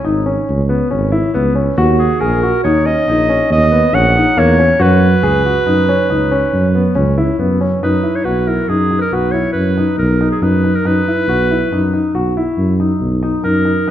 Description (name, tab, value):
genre	contemporary instrumental, chamber music in an uneven meter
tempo	139 BPM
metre	7/4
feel	straight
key	unclear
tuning	A4 = 440 Hz
part	warm concert grand piano	arpeggios	0.0-13.9 s	A#3 to G#4	-16 LUFS	left 2 dB	none
part	mellow tuba	bass	0.0-13.9 s	G#1 to F#2	-15 LUFS	right 1 dB	none
part	clear clarinet	melody	2.0-13.9 s	G#4 to F#5	-17 LUFS	right 2 dB	none
room	wet recital hall reverb, RT60 1.6 s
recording	dark, warm production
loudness	-12 LUFS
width	side -11 dB against mid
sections	0.0-7.8 A section; 7.8-13.9 B section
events	none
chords	0.0 C#7(no3); 1.8 D#m7; 4.8 F#sus4; 7.8 E5